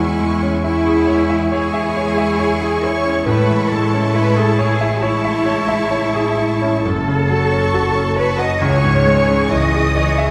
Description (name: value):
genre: classical, romantic movement for piano and orchestra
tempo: 68 BPM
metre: 4/4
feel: rubato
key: C# minor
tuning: A4 = 440 Hz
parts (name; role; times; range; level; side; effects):
- clear grand piano; melody; 0.0-10.3 s; C#2 to F#5; -21 LUFS; equal; none
- rich symphonic violin section; second line; 0.0-10.3 s; G#5 to C#6; -27 LUFS; equal; none
- clear symphonic viola section; accompaniment; 0.0-10.3 s; E3 to G#4; -25 LUFS; equal; none
- clear studio double bass section; bass; 0.0-10.3 s; F#1 to E2; -24 LUFS; equal; none
- warm symphonic violin section; melody; 0.6-10.3 s; E5 to D#6; -32 LUFS; equal; none
- rich symphonic cello section; bass; 0.6-10.3 s; E4 to D#5; -22 LUFS; equal; none
room: wet concert hall reverb, RT60 1.8 s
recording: none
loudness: -16 LUFS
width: mono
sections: 0.0-10.3 A section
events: none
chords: 0.0 C#m/E; 3.3 Amaj7; 6.9 F#m; 8.6 C#m